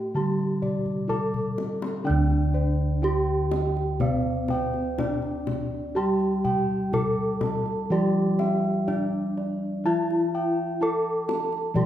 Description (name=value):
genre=Javanese gamelan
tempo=62 BPM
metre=4/4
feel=straight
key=D slendro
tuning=A4 = 440 Hz
part: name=gamelan-type bronze metallophone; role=melody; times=0.0-11.9 s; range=C4-40c to A4+20c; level=-28 LUFS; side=right 1 dB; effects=none
part: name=gamelan-type bronze metallophone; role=accompaniment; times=0.0-11.9 s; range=D3 to C4-40c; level=-29 LUFS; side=left 1 dB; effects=none
part: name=gamelan-type bossed gongs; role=bass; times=0.0-11.9 s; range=D2 to A4+20c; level=-29 LUFS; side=equal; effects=none
part: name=gamelan-type bossed gongs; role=arpeggios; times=0.2-11.9 s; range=C5-40c to A5+20c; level=-34 LUFS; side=left 3 dB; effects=none
part: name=kendang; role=percussion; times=0.4-11.9 s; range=none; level=-32 LUFS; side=left 4 dB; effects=none
part: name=gamelan-type bronze metallophone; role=arpeggios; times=2.1-11.9 s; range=C5-40c to A5+20c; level=-34 LUFS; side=right 8 dB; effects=none
room=wet recital hall reverb, RT60 1.4 s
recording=recorded in a church or concert hall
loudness=-23 LUFS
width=side -11 dB against mid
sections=0.0-2.1 A section; 2.1-11.9 B section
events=drum fill 0.9-2.1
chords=none